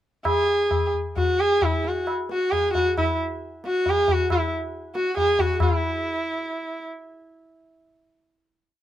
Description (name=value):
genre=indian classical, Hindustani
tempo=131-147 BPM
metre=3/4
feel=straight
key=unclear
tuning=A4 = 436 Hz
part: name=rich sarangi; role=melody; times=0.3-6.8 s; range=E4 to G#4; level=-22 LUFS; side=equal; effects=none
part: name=tabla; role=percussion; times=0.3-5.8 s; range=none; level=-26 LUFS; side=left 2 dB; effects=none
room=little or no reverb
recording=close, detailed microphones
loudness=-21 LUFS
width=side -12 dB against mid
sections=0.3-5.6 theme; 5.6-8.1 final note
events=speeding up 0.3-8.1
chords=none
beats=| 0.26 0.71 1.17 | 1.62 2.08 2.53 | 2.98 3.42 3.87 | 4.31 4.74 5.18 | 5.61 6.04 6.46